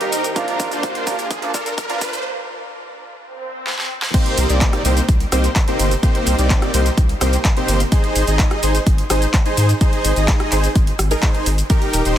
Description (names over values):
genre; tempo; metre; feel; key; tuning
EDM, festival progressive house; 127 BPM; 4/4; straight; C minor; A4 = 438 Hz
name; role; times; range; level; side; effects
bright grand piano; accompaniment; 0.0-2.0 s; Bb2 to G4; -28 LUFS; right 4 dB; sidechain pumping, tape echo
lush unison pad; sustained chords; 0.0-2.2 s; D3 to G4; -34 LUFS; right 2 dB; chorus, sidechain pumping
dense compressed supersaw; riff; 0.0-12.2 s; Bb3 to Eb5; -21 LUFS; equal; sidechain pumping, tape echo
big-room dance drum kit; drums; 0.0-12.1 s; cabasa, crash cymbal, handclaps, hi-hat, ride cymbal, rim click, snare drum; -23 LUFS; equal; none
riser and swell; sound effects; 0.0-4.1 s; none; -30 LUFS; equal; none
saturated sub bass; bass; 0.1-12.2 s; Eb1 to Bb2; -18 LUFS; equal; sidechain pumping
electronic kick drum; drums; 0.4-11.8 s; none; -16 LUFS; equal; none
room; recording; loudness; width
light reverb; dense, heavily limited modern master, high-pass filter; -15 LUFS; side -11 dB against mid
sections
0.0-4.1 A section; 4.1-12.2 B section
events
build-up 0.0-4.1; drum fill 0.0-2.2, 3.7-4.1; riser 0.0-2.2; filter sweep 0.0-4.1; break 2.2-4.1; swell 3.2-4.1; drop 4.1-12.2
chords
0.4 Bb; 4.1 Cm7; 7.9 Ab